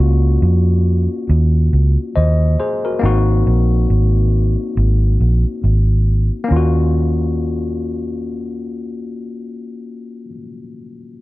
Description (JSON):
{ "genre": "lovers rock reggae", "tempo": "69 BPM", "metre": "4/4", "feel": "swing 60% on 16ths", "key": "Eb dorian", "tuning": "A4 = 441 Hz", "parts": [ { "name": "tine electric piano", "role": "accompaniment", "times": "0.0-11.2 s", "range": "Bb3 to Eb5", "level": "-22 LUFS", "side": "left 3 dB", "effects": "overdrive" }, { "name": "vintage muted fingered electric bass", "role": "bass", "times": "0.0-10.3 s", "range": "Ab1 to F2", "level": "-14 LUFS", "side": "equal", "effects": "none" } ], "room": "small room ambience", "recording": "nothing above 10.5 kHz", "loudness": "-13 LUFS", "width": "side -18 dB against mid", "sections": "0.0-6.5 A section; 6.5-10.0 B section", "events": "none", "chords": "0.0 Ebm7; 3.0 Ab7; 6.5 Ebm7" }